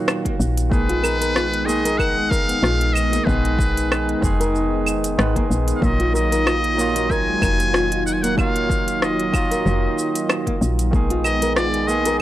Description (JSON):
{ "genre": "organic downtempo", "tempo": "94 BPM", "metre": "4/4", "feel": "swing 55% on 16ths", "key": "unclear", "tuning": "A4 = 445 Hz", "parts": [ { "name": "trumpet with metal mute", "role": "melody", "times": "0.0-12.2 s", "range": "Cb5 to Ab5", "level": "-24 LUFS", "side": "left 1 dB", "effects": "tape echo" }, { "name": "barky tine electric piano", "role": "accompaniment", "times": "0.0-12.2 s", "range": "Eb3 to F5", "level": "-24 LUFS", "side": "right 3 dB", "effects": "sidechain pumping, tape echo" }, { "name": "warm analog pad", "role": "sustained chords", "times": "0.0-12.2 s", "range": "Bb2 to Ab4", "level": "-28 LUFS", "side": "left 2 dB", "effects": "chorus, sidechain pumping" }, { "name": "organic electronic drum kit", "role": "drums", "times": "0.1-12.2 s", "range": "cabasa, claves, hi-hat, rim click", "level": "-25 LUFS", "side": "equal", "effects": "overdrive" }, { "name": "nylon-string guitar", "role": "arpeggios", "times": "0.3-12.2 s", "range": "Ab3 to Bb4", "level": "-26 LUFS", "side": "left 1 dB", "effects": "vintage 12-bit sampler grit" }, { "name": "electronic kick drum", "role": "drums", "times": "0.3-11.1 s", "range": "none", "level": "-22 LUFS", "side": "equal", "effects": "none" }, { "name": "woody FM bass", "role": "bass", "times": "0.4-12.2 s", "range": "F1 to Bb1", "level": "-23 LUFS", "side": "equal", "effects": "sidechain pumping" } ], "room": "light reverb", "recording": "dry, gritty hardware recording", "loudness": "-17 LUFS", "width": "side -14 dB against mid", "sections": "0.0-12.2 A section", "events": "none", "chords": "0.0 Ebmadd9; 0.7 Abm/Bb; 5.8 Ebmadd9; 10.9 Abm/Bb" }